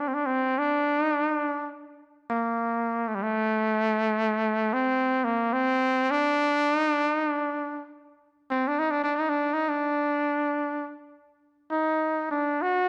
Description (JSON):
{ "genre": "arabic", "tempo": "free time", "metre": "none", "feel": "none", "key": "D maqam hijaz", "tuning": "A4 = 437 Hz", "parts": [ { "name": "warm trumpet", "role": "solo", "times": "0.0-12.9 s", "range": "G3 to F#4", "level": "-26 LUFS", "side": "equal", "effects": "none" } ], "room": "moderate recital hall reverb, RT60 1.6 s", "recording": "close, detailed microphones", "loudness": "-26 LUFS", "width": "mono", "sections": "0.0-12.9 A section", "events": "none", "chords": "none" }